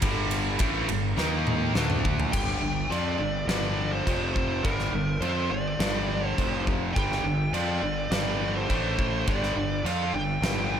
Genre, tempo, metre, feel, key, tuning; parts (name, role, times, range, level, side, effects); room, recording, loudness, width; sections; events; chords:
hard rock; 104 BPM; 4/4; straight; G minor; A4 = 445 Hz
distorted electric guitar; riff; 0.0-10.8 s; F2 to F4; -32 LUFS; left 9 dB; overdrive
tight distorted guitar; riff; 0.0-10.8 s; F2 to F4; -32 LUFS; right 8 dB; distortion
fuzz fingered electric bass; bass; 0.0-10.8 s; F1 to F2; -31 LUFS; equal; overdrive
huge arena drum kit; drums; 0.0-10.6 s; crash cymbal, kick drum, ride cymbal, snare drum, toms; -29 LUFS; equal
high-gain lead guitar; melody; 2.3-10.8 s; Bb4 to G5; -31 LUFS; right 1 dB; distortion, slapback echo
moderate lush hall reverb, RT60 2.7 s; big arena sound; -24 LUFS; side -8 dB against mid
0.0-2.3 A section; 2.3-10.8 B section
drum fill 1.2-2.3
0.0 G5; 1.2 Eb5; 1.8 D5; 2.3 G5; 4.1 F5; 4.6 Gm; 6.4 F5; 7.0 G5; 8.7 A5; 9.3 G5